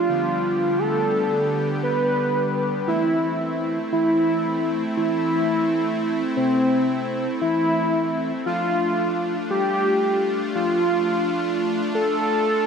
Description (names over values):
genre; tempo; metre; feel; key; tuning
synthwave; 86 BPM; 4/4; straight; A minor; A4 = 438 Hz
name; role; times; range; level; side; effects
wide unison lead; melody; 0.0-12.7 s; C4 to B4; -21 LUFS; equal; ping-pong delay
soft supersaw; sustained chords; 0.0-12.7 s; D3 to G4; -26 LUFS; equal; lush chorus
room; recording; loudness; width
wet plate reverb, RT60 3.5 s; bright 1980s-style digital production; -20 LUFS; side -6 dB against mid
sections
0.0-2.9 A section; 2.9-12.7 B section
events
none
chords
0.1 Gadd9/D; 2.9 Am; 8.5 Dm